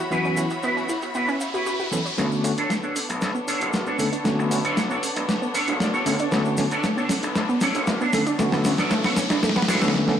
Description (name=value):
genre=nu-disco, nu disco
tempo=116 BPM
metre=4/4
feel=straight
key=B minor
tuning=A4 = 440 Hz
part: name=bright studio violin section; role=sustained chords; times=0.0-9.9 s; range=B3 to B5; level=-31 LUFS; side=left 2 dB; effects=low-pass filter
part: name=wide unison pluck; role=arpeggios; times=0.0-9.9 s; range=A3 to E5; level=-28 LUFS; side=right 2 dB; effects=tape echo
part: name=riser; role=sound effects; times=0.1-9.9 s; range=none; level=-34 LUFS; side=left 1 dB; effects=none
part: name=bell-like tine electric piano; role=accompaniment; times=0.1-10.1 s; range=D3 to A4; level=-25 LUFS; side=left 1 dB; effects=medium stereo tremolo, tape echo
part: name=electric guitar with an envelope filter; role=riff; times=0.1-9.9 s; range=D4 to F#5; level=-27 LUFS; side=right 1 dB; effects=ensemble chorus, low-pass filter, tape echo
part: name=dusty soul sampler-style drum kit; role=drums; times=0.1-10.2 s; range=hi-hat, snare drum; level=-26 LUFS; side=left 1 dB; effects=low-pass filter on hats, studio reverb, low-pass filter on snare
part: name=cabasa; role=percussion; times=0.1-9.9 s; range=none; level=-38 LUFS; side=equal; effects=none
part: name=gritty slap bass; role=bass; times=2.2-9.9 s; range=F#1 to D2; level=-30 LUFS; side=left 1 dB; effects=overdrive, high-pass filter
room=light reverb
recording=dry, gritty hardware recording, transformer saturation, small room ambience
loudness=-20 LUFS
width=side -9 dB against mid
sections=0.0-2.2 A section; 2.2-10.2 B section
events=riser 0.1-2.2, 2.2-9.9; build-up 2.2-10.2; drum fill 2.2-9.9, 9.9; filter sweep on synth arpeggio sound 2.2-10.2; clean electric guitar fill 5.3-6.3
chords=0.0 F#7sus4; 2.2 Bm9